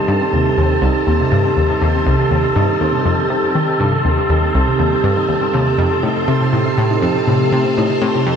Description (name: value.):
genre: ambient, sequencer-driven space music.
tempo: 121 BPM.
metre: 4/4.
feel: straight.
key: C dorian.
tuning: A4 = 443 Hz.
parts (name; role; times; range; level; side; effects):
phased string machine; sustained chords; 0.0-8.4 s; G3 to C5; -26 LUFS; equal; ensemble chorus, phaser.
concert harp; arpeggios; 0.0-8.4 s; C3 to G4; -17 LUFS; moving between left 1 dB and right 5 dB; auto-pan, analog delay.
wind-like tuned noise texture; texture; 0.0-8.4 s; A4 to A5; -20 LUFS; equal; built-in reverb.
analog pluck; riff; 0.1-8.3 s; C2 to Eb3; -17 LUFS; left 2 dB; chorus, analog delay.
room: wet lush hall reverb, RT60 2.7 s.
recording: none.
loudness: -13 LUFS.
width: side -7 dB against mid.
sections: 0.0-8.4 A section.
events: fade-in on string machine 0.0-8.4.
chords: 0.0 Cm; 5.8 F.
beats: 0.33 0.83 1.32 | 1.82 2.31 2.81 3.31 | 3.80 4.30 4.79 5.29 | 5.79 6.28 6.78 7.27 | 7.77 8.26.